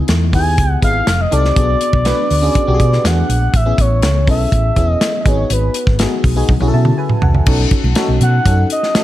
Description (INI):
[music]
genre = polished 1980s jazz-funk pop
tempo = 122 BPM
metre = 4/4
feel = straight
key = unclear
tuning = A4 = 441 Hz
[part]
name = FM electric piano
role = accompaniment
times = 0.0-9.0 s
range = B3 to A5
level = -20 LUFS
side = left 1 dB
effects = analog chorus
[part]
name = hollow-body short-scale fingered electric bass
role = bass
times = 0.1-8.6 s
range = E1 to B2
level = -15 LUFS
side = equal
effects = none
[part]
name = modern studio drum kit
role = drums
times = 0.1-9.0 s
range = crash cymbal, hi-hat, kick drum, snare drum, toms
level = -16 LUFS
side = equal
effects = none
[part]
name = expressive synth lead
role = melody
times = 0.3-9.0 s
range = B4 to G#5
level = -18 LUFS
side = equal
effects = chorus
[part]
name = congas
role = percussion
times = 7.5-9.0 s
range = none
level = -28 LUFS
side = right 2 dB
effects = none
[sound]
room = small room ambience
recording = none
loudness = -12 LUFS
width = side -14 dB against mid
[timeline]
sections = 0.0-7.5 A section; 7.5-9.0 B section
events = drum fill 6.5-7.5; FM electric piano fill 6.5-7.5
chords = 0.0 C#m7; 1.1 F9; 1.6 Bm69; 3.0 E9; 3.5 Amaj7; 5.3 G#m7; 6.5 B7sus4; 7.5 B9